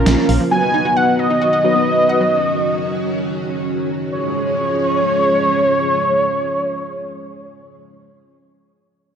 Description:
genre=pop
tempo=133 BPM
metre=4/4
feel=straight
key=Db mixolydian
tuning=A4 = 440 Hz
part: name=mellow synth brass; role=accompaniment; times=0.0-2.2 s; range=Bb3 to Cb5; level=-20 LUFS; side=left 1 dB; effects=chorus, phaser
part: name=string machine, cellos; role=sustained chords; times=0.0-7.8 s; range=Db3 to Ab4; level=-22 LUFS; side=equal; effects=ensemble chorus
part: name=analog pluck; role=arpeggios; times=0.0-2.3 s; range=F3 to Gb5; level=-24 LUFS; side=right 1 dB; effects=chorus, analog delay
part: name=wide unison lead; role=melody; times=0.5-7.7 s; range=Db5 to Ab5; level=-16 LUFS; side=equal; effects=none
room=moderate lush hall reverb, RT60 2.0 s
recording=worn, warbling old tape, cassette tape, warbly pitch drift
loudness=-14 LUFS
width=side -7 dB against mid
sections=0.0-4.1 A section; 4.1-7.7 B section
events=none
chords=0.0 Bbm; 0.5 Cb; 4.1 Db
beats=0.06 | 0.52 0.97 1.42 1.87 | 2.32 2.77 3.22 3.67 | 4.12 4.58 5.03 5.48 | 5.93 6.38 6.83 7.28

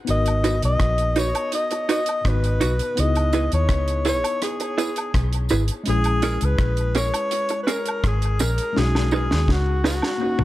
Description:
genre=lovers rock reggae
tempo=83 BPM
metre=4/4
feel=straight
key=G# minor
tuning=A4 = 440 Hz
part: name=tine electric piano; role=accompaniment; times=0.0-10.4 s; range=G#3 to B4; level=-29 LUFS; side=left 3 dB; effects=medium stereo tremolo
part: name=breathy alto saxophone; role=melody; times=0.1-10.4 s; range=F#4 to D#5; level=-25 LUFS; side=left 1 dB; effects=tape echo
part: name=vintage muted fingered electric bass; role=bass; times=0.1-10.4 s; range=G#1 to D#2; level=-22 LUFS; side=equal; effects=none
part: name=deep reggae drum kit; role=drums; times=0.1-10.4 s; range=hi-hat, kick drum, rim click, snare drum, toms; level=-26 LUFS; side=equal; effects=none
part: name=woodblock and tambourine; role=percussion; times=0.3-10.2 s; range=none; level=-34 LUFS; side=right 2 dB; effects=dub echo
part: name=electric guitar through a small old amp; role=stabs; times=0.4-10.4 s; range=C#4 to B4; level=-26 LUFS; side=right 4 dB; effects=tremolo, dub echo
room=light reverb, small room ambience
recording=none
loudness=-19 LUFS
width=side -15 dB against mid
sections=0.0-10.4 A section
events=drum fill 8.8-10.4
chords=0.1 G#m7; 3.0 C#m7; 5.9 A#m7b5; 8.8 B6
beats=| 0.08 0.80 1.53 2.25 | 2.97 3.70 4.42 5.14 | 5.87 6.59 7.32 8.04 | 8.76 9.49 10.21

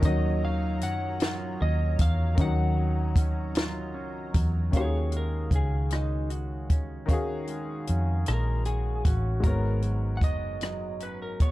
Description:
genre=slow six-eight R&B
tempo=51 BPM (dotted quarters)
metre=6/8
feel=straight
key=Eb minor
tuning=A4 = 438 Hz
part: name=lightly driven lead guitar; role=melody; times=0.0-11.5 s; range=Eb4 to Gb5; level=-35 LUFS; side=equal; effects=plate reverb
part: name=clean electric guitar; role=second line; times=0.0-11.5 s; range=Ab2 to Gb4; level=-38 LUFS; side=right 4 dB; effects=plate reverb
part: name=clear concert grand piano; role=accompaniment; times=0.0-11.5 s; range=Eb3 to F5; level=-34 LUFS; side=left 3 dB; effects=plate reverb
part: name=chorused pulse-width pad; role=sustained chords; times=0.0-4.7 s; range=Gb3 to Bb5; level=-39 LUFS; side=right 3 dB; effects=plate reverb
part: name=vintage muted fingered electric bass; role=bass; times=0.0-11.5 s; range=Gb1 to Gb2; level=-28 LUFS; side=equal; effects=none
part: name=compact cocktail drum kit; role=drums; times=0.0-11.5 s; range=hi-hat, kick drum, rim click, snare drum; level=-25 LUFS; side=equal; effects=none
room=little or no reverb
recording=dark, warm production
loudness=-25 LUFS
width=side -17 dB against mid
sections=0.0-4.7 A section; 4.7-11.5 B section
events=lead electric guitar solo 4.7-11.5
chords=0.0 Ebm9; 4.7 Ebm11; 9.4 Abm11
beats=| 0.03 1.20 | 2.38 3.56 | 4.73 5.91 | 7.08 8.26 | 9.44 10.61

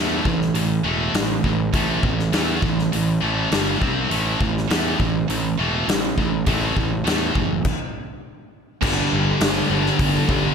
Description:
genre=hard rock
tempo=102 BPM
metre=4/4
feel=straight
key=A minor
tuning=A4 = 437 Hz
part: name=scooped high-gain guitar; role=riff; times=0.0-10.5 s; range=G2 to C4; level=-25 LUFS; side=left 13 dB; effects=distortion
part: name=scooped high-gain guitar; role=riff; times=0.0-10.5 s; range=G2 to C4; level=-24 LUFS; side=right 12 dB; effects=distortion
part: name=fuzz picked electric bass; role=bass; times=0.0-10.5 s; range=E1 to E2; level=-25 LUFS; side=equal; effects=overdrive
part: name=huge arena drum kit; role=drums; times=0.3-10.4 s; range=crash cymbal, hi-hat, kick drum, snare drum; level=-23 LUFS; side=left 1 dB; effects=none
part: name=warm analog pad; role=sustained chords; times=8.8-10.5 s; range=G3 to A4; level=-32 LUFS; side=left 1 dB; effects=none
part: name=overdriven electric guitar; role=riff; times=8.8-10.5 s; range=G2 to G3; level=-24 LUFS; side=left 2 dB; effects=none
room=little or no reverb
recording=none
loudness=-18 LUFS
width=side -6 dB against mid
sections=0.0-8.8 A section; 8.8-10.5 B section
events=stop 7.6-8.8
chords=0.0 A5; 3.5 G5; 3.8 C5; 4.1 A5; 8.5 N.C.; 8.8 G5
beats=0.56 1.15 | 1.75 2.34 2.93 3.52 | 4.11 4.70 5.29 5.88 | 6.47 7.06 7.65 8.23 | 8.82 9.41 9.99

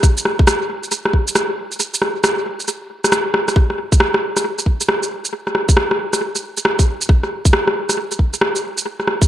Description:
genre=future garage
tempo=136 BPM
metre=4/4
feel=swing 64% on 16ths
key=none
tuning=none
part: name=electronic kick drum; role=drums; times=0.0-9.3 s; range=none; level=-13 LUFS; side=equal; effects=none
part: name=electronic shaker and rim click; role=drums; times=0.0-9.3 s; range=none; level=-17 LUFS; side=equal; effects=analog delay
room=moderate spring reverb, RT60 2.0 s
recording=echo-heavy mix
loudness=-15 LUFS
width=side -12 dB against mid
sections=0.0-3.6 A section; 3.6-9.3 B section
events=kick drops out 1.8-3.6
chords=none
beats=| 0.03 0.47 0.92 1.36 | 1.80 2.24 2.68 3.12 | 3.56 4.00 4.45 4.89 | 5.33 5.77 6.21 6.65 | 7.09 7.53 7.97 8.42 | 8.86

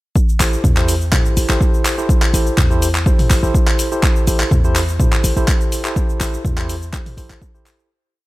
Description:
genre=afro house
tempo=124 BPM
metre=4/4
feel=straight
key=A minor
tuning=A4 = 442 Hz
part: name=deep house drum kit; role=drums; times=0.2-7.9 s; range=handclaps, hi-hat, shaker, toms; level=-21 LUFS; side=equal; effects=none
part: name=electronic kick drum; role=drums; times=0.2-7.5 s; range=none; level=-16 LUFS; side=equal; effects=none
part: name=tine electric piano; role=stabs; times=0.4-7.9 s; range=E4 to C5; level=-22 LUFS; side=right 1 dB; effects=fast stereo tremolo, sidechain pumping, dub echo
part: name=warm 808-style bass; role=bass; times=0.4-7.4 s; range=A1 to E2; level=-19 LUFS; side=equal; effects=sidechain pumping
room=digital ambience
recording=none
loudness=-13 LUFS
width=side -18 dB against mid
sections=0.2-7.9 drop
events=drop 0.2-7.9; fade-out 5.3-7.9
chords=0.2 Am7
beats=| 0.16 0.65 1.13 1.61 | 2.10 2.58 3.06 3.55 | 4.03 4.52 5.00 5.48 | 5.97 6.45 6.94 7.42

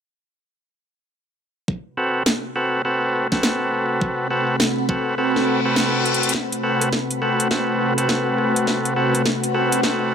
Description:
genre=glitch hop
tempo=103 BPM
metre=4/4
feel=swing 62% on 16ths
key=A dorian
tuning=A4 = 441 Hz
part: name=warm analog pad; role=sustained chords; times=1.7-10.1 s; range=C3 to B4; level=-26 LUFS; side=left 1 dB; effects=chorus, sidechain pumping
part: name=electronic kick drum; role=drums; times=1.7-10.0 s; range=none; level=-26 LUFS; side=equal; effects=high-pass filter on kick, high-pass filter on room
part: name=ethereal airy pad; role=texture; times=3.9-10.1 s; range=C4 to B5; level=-26 LUFS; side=equal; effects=ensemble chorus, built-in reverb, phaser, sidechain pumping
part: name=overdriven tonewheel organ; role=stabs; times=2.0-10.1 s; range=C4 to B4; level=-21 LUFS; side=equal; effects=sidechain pumping, low-pass filter, ping-pong delay
part: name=drum and bass drum kit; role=drums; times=2.3-10.0 s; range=hi-hat, rim click, snare drum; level=-22 LUFS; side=equal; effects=none
part: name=reverse cymbal and riser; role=sound effects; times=5.4-10.1 s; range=none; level=-29 LUFS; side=left 5 dB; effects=none
room=light reverb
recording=none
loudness=-18 LUFS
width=side -7 dB against mid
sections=1.7-6.3 A section; 6.3-10.1 B section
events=fade-in on ambient pad 1.7-6.3; filter sweep on analog synth pad 1.7-6.3; reverse cymbal 5.4-6.3; drum fill 6.1, 6.3-10.1; build-up 6.3-10.1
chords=1.7 Am69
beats=| 1.68 2.27 2.85 3.43 | 4.01 4.59 5.18 5.76 | 6.34 6.92 7.51 8.09 | 8.67 9.26 9.84

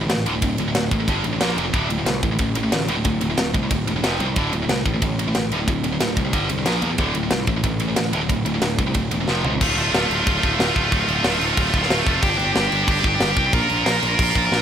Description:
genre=heavy metal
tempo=183 BPM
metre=4/4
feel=straight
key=D minor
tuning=A4 = 441 Hz
part: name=heavy high-gain guitar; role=riff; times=0.0-14.6 s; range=D2 to Bb4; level=-21 LUFS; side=equal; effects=distortion
part: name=fuzz picked electric bass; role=bass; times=0.0-14.6 s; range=D1 to E2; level=-24 LUFS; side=equal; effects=overdrive
part: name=tight metal drum kit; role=drums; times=0.1-14.6 s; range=crash cymbal, kick drum, ride cymbal, snare drum, toms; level=-23 LUFS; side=equal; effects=none
room=little or no reverb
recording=none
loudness=-18 LUFS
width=side -9 dB against mid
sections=0.0-9.6 A section; 9.6-14.6 B section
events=drum fill 9.3-9.6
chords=0.0 D5; 1.1 G5; 1.4 Bb5; 1.7 D5; 4.0 F5; 4.4 D5; 6.3 G5; 6.7 Bb5; 7.0 D5; 9.3 F5; 9.6 Dm; 12.2 G5; 13.5 Bb5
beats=0.09 | 0.42 0.75 1.08 1.41 | 1.74 2.06 2.39 2.72 | 3.05 3.38 3.71 4.04 | 4.36 4.69 5.02 5.35 | 5.68 6.00 6.33 6.66 | 6.99 7.32 7.64 7.97 | 8.30 8.63 8.95 9.28 | 9.61 9.94 10.26 10.59 | 10.92 11.24 11.57 11.90 | 12.22 12.55 12.88 13.21 | 13.53 13.86 14.19 14.52

